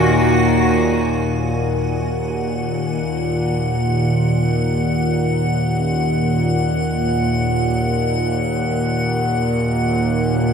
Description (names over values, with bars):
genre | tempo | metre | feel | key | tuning
dark ambient drone | free time | none | none | Eb minor | A4 = 441 Hz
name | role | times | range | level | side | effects
clear studio cello section | sustained chords | 0.0-1.2 s | Eb3 to Gb4 | -22 LUFS | equal | shimmer reverb
bowed-like drone | drone | 0.0-10.5 s | Eb2 to Bb2 | -17 LUFS | equal | built-in reverb
icy glass pad | texture | 0.0-10.5 s | Gb5 to Ab5 | -25 LUFS | left 1 dB | chorus, built-in reverb, shimmer reverb
gamelan-type bossed gongs | arpeggios | 5.8-10.5 s | none | barely audible | none | none
room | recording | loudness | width
wet cathedral reverb, RT60 6.3 s | none | -16 LUFS | side -6 dB against mid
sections
0.0-1.2 A section; 1.2-10.5 B section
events
none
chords
0.0 Ebm; 1.2 Ebm7